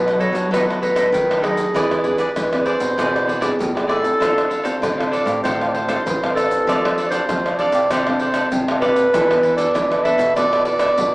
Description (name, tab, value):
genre	samba and choro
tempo	98 BPM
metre	4/4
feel	straight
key	unclear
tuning	A4 = 439 Hz
part	mellow clarinet	melody	0.0-11.1 s	G#4 to E5	-19 LUFS	right 1 dB	plate reverb
part	nylon-string guitar	accompaniment	0.0-11.1 s	F#2 to A4	-26 LUFS	equal	none
part	nylon-string guitar	bass	0.0-11.1 s	A2 to F#3	-24 LUFS	equal	none
part	cavaquinho	accompaniment	0.1-10.9 s	D4 to F5	-25 LUFS	equal	none
part	egg shaker, pandeiro, tamborim and surdo	percussion	0.1-11.1 s	none	-23 LUFS	equal	none
room	wet studio reverb, RT60 0.5 s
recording	heard from further back in the room, small speaker sound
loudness	-16 LUFS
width	side -22 dB against mid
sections	0.0-11.1 A section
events	none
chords	0.0 B7; 1.8 E7b13; 4.2 Dm7; 6.7 F6; 9.1 E7sus4